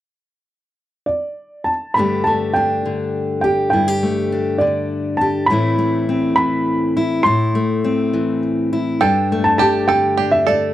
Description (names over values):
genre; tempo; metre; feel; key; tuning
folk; 68 BPM (dotted quarters); 6/8; straight; G major; A4 = 441 Hz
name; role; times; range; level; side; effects
dark upright piano; melody; 1.1-10.7 s; D5 to C6; -18 LUFS; right 1 dB; none
fingerpicked steel-string acoustic guitar; accompaniment; 2.0-10.7 s; G2 to G4; -18 LUFS; left 2 dB; none
bluegrass banjo; arpeggios; 9.0-10.7 s; G4 to A4; -22 LUFS; right 11 dB; none
room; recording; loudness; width
light reverb; dry, close 1970s-style studio recording; -15 LUFS; side -13 dB against mid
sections
0.2-2.0 A section; 2.0-9.0 B section; 9.0-10.7 C section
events
none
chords
0.2 N.C.; 2.0 Gsus2; 5.5 Am; 9.0 Gsus2